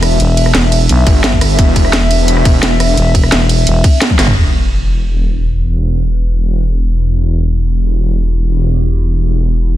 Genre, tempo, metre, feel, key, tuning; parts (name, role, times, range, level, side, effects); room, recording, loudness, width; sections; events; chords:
dark technical drum and bass; 173 BPM; 4/4; straight; E minor; A4 = 441 Hz
dark analog pad; sustained chords; 0.0-9.8 s; B3 to E5; -20 LUFS; left 1 dB; chorus, sidechain pumping
wide detuned saw bass; bass; 0.0-9.8 s; E1 to G1; -12 LUFS; equal; chorus, tube saturation
drum and bass drum kit; drums; 0.0-4.3 s; hi-hat, ride cymbal, rim click, snare drum, toms; -15 LUFS; right 1 dB
growling FM bass; bass; 0.2-4.3 s; E1 to B1; -11 LUFS; equal
electronic kick drum; drums; 1.1-4.2 s; -10 LUFS; equal; overdrive
sub drop; sound effects; 4.4-5.7 s; -17 LUFS; equal
digital ambience; dense, heavily limited modern master; -10 LUFS; side -13 dB against mid
0.0-4.4 A section; 4.4-9.8 B section
drop 0.0-4.4; drum fill 4.1; band accent 4.2; impact 4.4-5.7; filter sweep on analog synth pad 4.4-9.8
0.0 E5